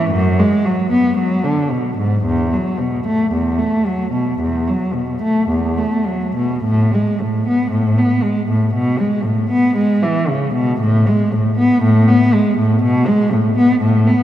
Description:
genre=classical, baroque-style suite movement for unaccompanied cello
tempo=52-61 BPM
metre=4/4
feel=rubato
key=unclear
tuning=A4 = 440 Hz
part: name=dark cello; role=solo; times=0.0-14.2 s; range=E2 to B3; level=-14 LUFS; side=equal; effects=none
room=wet church reverb, RT60 3.5 s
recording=none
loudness=-14 LUFS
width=side -12 dB against mid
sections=0.0-14.2 A section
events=none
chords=none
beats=0.09 1.17 | 2.24 3.33 4.41 5.50 | 6.64 7.72 8.74 9.78 | 10.82 11.84 12.84 13.83

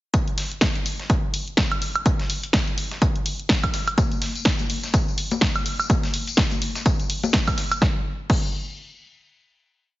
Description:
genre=house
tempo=125 BPM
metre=4/4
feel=swing 57% on 16ths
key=none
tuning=none
part: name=dusty soul sampler-style drum kit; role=drums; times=0.1-7.8 s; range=hi-hat, snare drum, tambourine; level=-32 LUFS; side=left 2 dB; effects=sidechain pumping on perc, high-pass filter on perc, studio reverb, high-pass filter on snare, sidechain pumping on hats, high-pass filter on hats
part: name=electronic kick drum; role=drums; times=0.1-8.5 s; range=none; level=-22 LUFS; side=equal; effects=overdrive, studio reverb
part: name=punchy analog drum machine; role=drums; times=0.1-8.5 s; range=crash cymbal, hi-hat, snare drum, woodblock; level=-25 LUFS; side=right 1 dB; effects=studio reverb
part: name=tambourine and congas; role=percussion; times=4.0-7.8 s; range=none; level=-29 LUFS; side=left 5 dB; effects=none
room=little or no reverb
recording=heavily compressed radio sound, nothing above 7.5 kHz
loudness=-20 LUFS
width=side -17 dB against mid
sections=0.1-7.8 drop; 7.8-10.0 final hit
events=drop 0.1-7.8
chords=none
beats=| 0.14 0.62 1.10 1.58 | 2.06 2.54 3.02 3.50 | 3.98 4.46 4.94 5.42 | 5.90 6.38 6.86 7.34 | 7.82 8.30

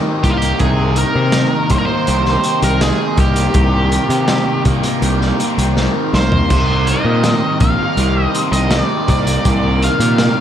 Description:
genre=psychedelic rock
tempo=81 BPM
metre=4/4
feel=straight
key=unclear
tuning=A4 = 440 Hz
part: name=combo organ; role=sustained chords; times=0.0-10.4 s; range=Eb3 to Bb4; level=-26 LUFS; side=right 5 dB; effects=none
part: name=fuzz guitar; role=riff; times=0.0-10.4 s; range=C3 to G4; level=-19 LUFS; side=equal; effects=distortion, phaser, analog delay
part: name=octave-fuzz lead guitar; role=melody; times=0.2-10.4 s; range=F4 to F5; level=-20 LUFS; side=equal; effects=wah, distortion, analog delay
part: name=fuzz picked electric bass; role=bass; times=0.2-10.3 s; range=Bb1 to C3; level=-16 LUFS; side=equal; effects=overdrive
part: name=crunchy breakbeat drum kit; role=drums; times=0.2-10.4 s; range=crash cymbal, hi-hat, kick drum, snare drum, toms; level=-19 LUFS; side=equal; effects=none
room=studio reverb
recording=echo-heavy mix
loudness=-12 LUFS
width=side -10 dB against mid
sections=0.0-10.4 A section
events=drum fill 5.8-6.5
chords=0.0 Cm7; 0.6 Eb/C; 6.5 Cm7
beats=| 0.60 1.34 2.07 2.81 | 3.55 4.29 5.02 5.76 | 6.50 7.24 7.97 8.71 | 9.45 10.19

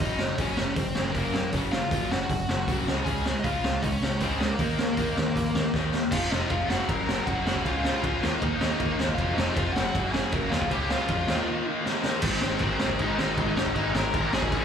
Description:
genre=punk rock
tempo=157 BPM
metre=4/4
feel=straight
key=Ab major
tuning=A4 = 440 Hz
part: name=bluesy overdriven lead guitar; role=melody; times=0.0-14.6 s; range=Bb3 to Bb5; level=-31 LUFS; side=left 1 dB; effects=distortion, slapback echo, tape echo
part: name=distorted electric guitar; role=riff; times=0.0-14.6 s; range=F2 to Eb4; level=-32 LUFS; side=left 11 dB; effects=overdrive, slapback echo
part: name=distorted electric guitar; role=riff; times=0.0-14.6 s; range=F2 to Eb4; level=-33 LUFS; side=right 9 dB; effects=distortion, slapback echo
part: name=growling picked electric bass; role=bass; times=0.0-14.6 s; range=F1 to F2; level=-32 LUFS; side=equal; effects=overdrive
part: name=raw garage drum kit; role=drums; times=0.0-14.6 s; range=crash cymbal, hi-hat, kick drum, ride cymbal, snare drum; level=-28 LUFS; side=equal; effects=none
room=light reverb, small room ambience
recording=live gig heard through the venue's PA, club reverb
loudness=-24 LUFS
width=side -8 dB against mid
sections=0.0-6.1 A section; 6.1-12.2 B section; 12.2-14.6 C section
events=drum fill 5.7-6.1, 11.9-12.2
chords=0.0 Gb; 2.9 Db; 4.6 Eb5; 6.1 F5; 6.7 Gb; 7.7 Db; 8.2 Eb5; 9.2 F5; 9.8 Gb; 10.7 Db; 11.3 Eb5; 12.2 Ab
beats=| 0.01 0.39 0.77 1.16 | 1.54 1.92 2.30 2.68 | 3.06 3.45 3.83 4.21 | 4.59 4.98 5.36 5.74 | 6.12 6.51 6.89 7.27 | 7.66 8.04 8.42 8.80 | 9.19 9.57 9.95 10.33 | 10.71 11.10 11.48 11.86 | 12.24 12.62 13.01 13.39 | 13.77 14.15 14.53

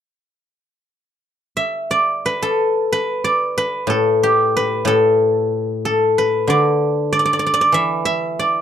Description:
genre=chinese traditional, Chinese solo plucked strings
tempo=87-95 BPM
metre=4/4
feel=rubato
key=D zhi mode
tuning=A4 = 440 Hz
part: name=guzheng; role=solo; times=1.6-8.6 s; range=A2 to E5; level=-15 LUFS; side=equal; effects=none
room=little or no reverb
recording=dry, close 1970s-style studio recording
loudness=-15 LUFS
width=side -9 dB against mid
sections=1.2-8.6 A section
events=none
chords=none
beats=| 1.20 1.88 2.56 3.23 | 3.89 4.55 5.20 5.85 | 6.50 7.13 7.76 8.41

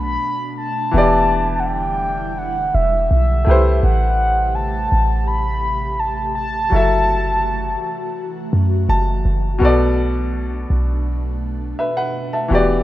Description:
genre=contemporary R&B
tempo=83 BPM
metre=4/4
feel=straight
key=B phrygian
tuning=A4 = 441 Hz
part: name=mellow horn-like synth lead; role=melody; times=0.0-8.8 s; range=E5 to B5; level=-20 LUFS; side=equal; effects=chorus, ping-pong delay
part: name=clear grand piano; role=accompaniment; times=0.0-12.8 s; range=B2 to A5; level=-21 LUFS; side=left 2 dB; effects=none
part: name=ethereal airy pad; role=sustained chords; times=0.0-12.8 s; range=B2 to G4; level=-29 LUFS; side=right 1 dB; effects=ensemble chorus, built-in reverb
part: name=clean 808-style bass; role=bass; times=0.0-12.8 s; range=E1 to F#2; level=-19 LUFS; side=equal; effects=none
room=light reverb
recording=rough home demo mix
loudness=-16 LUFS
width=side -15 dB against mid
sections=0.0-9.6 A section; 9.6-12.8 B section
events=grand piano fill 8.5-9.6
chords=0.0 Bm7; 0.9 Em7; 3.5 Am7; 6.7 F#m7; 9.6 Bm7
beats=0.21 | 0.94 1.66 2.38 3.11 | 3.83 4.55 5.28 6.00 | 6.72 7.44 8.17 8.89 | 9.61 10.34 11.06 11.78 | 12.50

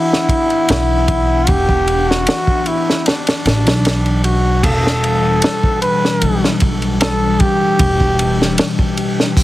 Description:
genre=trip hop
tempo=76 BPM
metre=4/4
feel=straight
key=E minor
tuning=A4 = 439 Hz
part: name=trumpet with bucket mute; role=melody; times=0.0-8.6 s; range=D4 to B4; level=-18 LUFS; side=equal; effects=dub echo
part: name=warbly tape-like pad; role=sustained chords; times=0.0-9.4 s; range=B2 to F#5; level=-20 LUFS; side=left 3 dB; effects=chorus, built-in reverb
part: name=crunchy breakbeat drum kit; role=drums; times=0.1-9.4 s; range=crash cymbal, hi-hat, kick drum, ride cymbal, snare drum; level=-17 LUFS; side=equal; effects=none
part: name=upright bass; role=bass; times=0.7-8.5 s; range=E1 to B1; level=-17 LUFS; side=equal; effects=none
room=small room ambience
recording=heavily compressed radio sound, multiband compression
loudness=-12 LUFS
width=side -16 dB against mid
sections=0.0-4.6 A section; 4.6-9.4 B section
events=none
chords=0.0 Bm; 4.6 Em7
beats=0.69 | 1.48 2.27 3.06 3.85 | 4.63 5.42 6.21 7.00 | 7.79 8.58 9.37

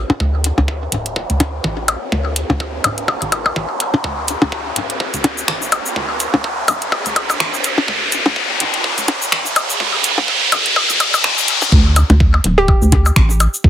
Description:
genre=minimal techno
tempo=125 BPM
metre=4/4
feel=swing 57% on 16ths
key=unclear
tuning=A4 = 441 Hz
part: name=rubbery square bass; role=bass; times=0.0-13.7 s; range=D1 to D2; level=-16 LUFS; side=equal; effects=sidechain pumping
part: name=riser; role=sound effects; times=0.0-11.7 s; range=none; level=-18 LUFS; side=equal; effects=none
part: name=percussion blips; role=percussion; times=0.1-13.5 s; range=none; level=-17 LUFS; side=left 2 dB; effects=overdrive, ping-pong delay
part: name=electronic kick drum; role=drums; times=0.2-13.7 s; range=none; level=-15 LUFS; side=equal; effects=high-pass filter on kick, high-pass filter on room
part: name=garage drum kit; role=drums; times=0.4-13.6 s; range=cabasa, finger snaps, hi-hat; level=-18 LUFS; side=equal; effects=none
part: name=hollow square pluck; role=melody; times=12.6-13.2 s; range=G4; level=-18 LUFS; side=right 1 dB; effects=chorus, ping-pong delay
room=light reverb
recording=heavily compressed radio sound, high-pass filter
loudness=-13 LUFS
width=side -11 dB against mid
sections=0.0-11.7 A section; 11.7-13.7 B section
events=build-up 0.0-11.7; riser 0.0-11.7; filter sweep 0.0-11.7; drop 11.7-13.7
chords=0.0 D5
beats=| 0.20 0.68 1.16 1.64 | 2.12 2.60 3.08 3.56 | 4.04 4.52 5.00 5.48 | 5.96 6.44 6.92 7.40 | 7.88 8.36 8.84 9.32 | 9.80 10.28 10.76 11.24 | 11.72 12.20 12.68 13.16 | 13.64

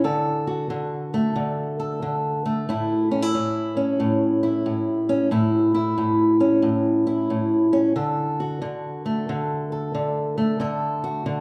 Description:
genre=blues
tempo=91 BPM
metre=4/4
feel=swing 65% on 8ths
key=A major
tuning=A4 = 440 Hz
part: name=fingerpicked old ladder-braced acoustic guitar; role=solo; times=0.0-11.4 s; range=A2 to A4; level=-23 LUFS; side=equal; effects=none
room=moderate large studio reverb, RT60 1.2 s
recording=band playing live in one room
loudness=-23 LUFS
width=mono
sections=0.0-11.4 A section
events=none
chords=0.0 D; 2.7 A; 7.9 D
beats=| 0.04 0.69 1.35 2.01 | 2.67 3.33 3.99 4.64 | 5.30 5.96 6.62 7.28 | 7.94 8.60 9.26 9.92 | 10.58 11.24

